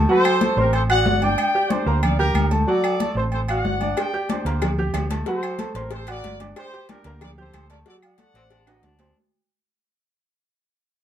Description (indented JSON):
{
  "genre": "latin, salsa",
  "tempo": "185 BPM",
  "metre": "4/4",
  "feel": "straight",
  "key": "unclear",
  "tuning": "A4 = 440 Hz",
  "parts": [
    { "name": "clear concert grand piano", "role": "accompaniment", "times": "0.0-9.1 s", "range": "F#3 to G6", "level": "-24 LUFS", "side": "right 1 dB", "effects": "none" },
    { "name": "hollow-body short-scale fingered electric bass", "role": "bass", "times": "0.0-9.1 s", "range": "G1 to D2", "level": "-23 LUFS", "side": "equal", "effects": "none" },
    { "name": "dark trumpet section", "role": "melody", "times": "0.1-9.0 s", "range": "G4 to G5", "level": "-24 LUFS", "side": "equal", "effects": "none" },
    { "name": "congas", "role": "percussion", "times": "0.1-9.2 s", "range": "none", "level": "-27 LUFS", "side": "left 3 dB", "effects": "none" },
    { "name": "agogo bells and timbales", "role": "percussion", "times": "0.2-9.2 s", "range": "none", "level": "-30 LUFS", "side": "right 3 dB", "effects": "none" },
    { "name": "claves", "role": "percussion", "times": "0.3-8.8 s", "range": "none", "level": "-33 LUFS", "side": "left 6 dB", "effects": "none" },
    { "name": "cowbell", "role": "percussion", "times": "4.0-9.2 s", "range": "none", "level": "-32 LUFS", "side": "left 5 dB", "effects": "none" },
    { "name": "clear baritone saxophone", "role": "second line", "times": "8.4-9.2 s", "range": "C4 to Eb4", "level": "-66 LUFS", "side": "left 5 dB", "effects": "none" }
  ],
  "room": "moderate small room reverb, RT60 0.6 s",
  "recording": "minimal, uncompressed stereo recording",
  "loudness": "-18 LUFS",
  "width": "side -10 dB against mid",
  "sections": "0.0-9.2 A section",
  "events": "fade-out 0.0-9.2; drum fill 8.7-9.2",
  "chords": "0.1 D7; 1.4 Gm; 2.7 D7; 4.0 Gm; 5.3 D7; 6.6 Gm; 7.9 D7"
}